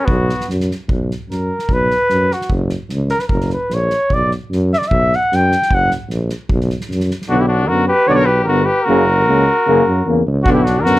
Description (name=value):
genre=balkan folk, Balkan brass band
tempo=151 BPM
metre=2/4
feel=straight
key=B harmonic minor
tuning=A4 = 439 Hz
part: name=warm flugelhorn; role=melody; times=0.0-11.0 s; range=B3 to G5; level=-16 LUFS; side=equal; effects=none
part: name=clear trumpet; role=second line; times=0.0-0.5, 7.3-11.0 s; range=D4 to B4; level=-20 LUFS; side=left 2 dB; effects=none
part: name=mellow tuba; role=bass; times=0.1-11.0 s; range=F#1 to F#2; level=-18 LUFS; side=equal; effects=none
part: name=soft-mallet drum kit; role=percussion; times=0.1-7.3, 10.5-11.0 s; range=kick drum, snare drum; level=-22 LUFS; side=equal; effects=none
part: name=clear trombone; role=accompaniment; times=7.3-11.0 s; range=C#3 to D3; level=-20 LUFS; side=right 3 dB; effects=none
part: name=mellow euphonium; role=accompaniment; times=7.3-11.0 s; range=A#3 to B3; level=-19 LUFS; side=left 5 dB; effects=none
room=light reverb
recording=none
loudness=-13 LUFS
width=side -17 dB against mid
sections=0.9-7.3 A section; 7.3-11.0 B section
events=flugelhorn solo 0.9-7.3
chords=0.0 B5; 2.5 F#; 4.1 B5; 5.7 F#; 6.5 B5; 7.3 Bm; 8.9 F#; 10.4 Bm